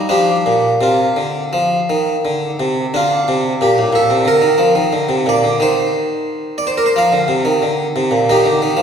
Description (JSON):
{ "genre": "classical, baroque-style suite movement for harpsichord", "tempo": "88 BPM", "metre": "4/4", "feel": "uneven beats, rubato", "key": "Bb major", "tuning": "A4 = 440 Hz", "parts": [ { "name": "harpsichord", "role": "solo", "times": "0.0-8.8 s", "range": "A2 to F5", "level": "-13 LUFS", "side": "equal", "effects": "none" } ], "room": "wet scoring stage reverb, RT60 1.8 s", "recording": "recorded in a church or concert hall", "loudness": "-13 LUFS", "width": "side -7 dB against mid", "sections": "0.0-2.9 A section; 2.9-8.8 B section", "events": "none", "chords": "0.1 Bb; 1.5 F5; 2.9 Bb; 5.6 N.C.; 7.0 F5; 8.3 Eb", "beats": "| 0.11 0.82 1.53 2.24 | 2.93 3.60 4.28 4.94 | 5.60 6.27 6.97 7.63 | 8.29" }